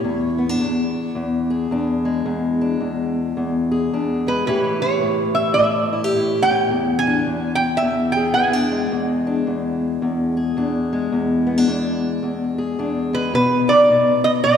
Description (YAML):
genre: acoustic country blues, solo or duo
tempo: 108 BPM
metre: 4/4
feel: swing 61% on 8ths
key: E mixolydian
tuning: A4 = 440 Hz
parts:
  - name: lap resonator guitar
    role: melody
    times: 0.0-14.6 s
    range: B4 to G#5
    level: -18 LUFS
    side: right 1 dB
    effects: none
  - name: fingerpicked steel-string acoustic guitar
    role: accompaniment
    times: 0.0-14.6 s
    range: E2 to G#4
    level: -19 LUFS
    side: left 2 dB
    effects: none
room: wet concert hall reverb, RT60 2.5 s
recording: recorded in a church or concert hall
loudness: -17 LUFS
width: side -8 dB against mid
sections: 0.0-14.6 A section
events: none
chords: 0.0 E7; 4.5 A7; 6.7 E7; 13.3 B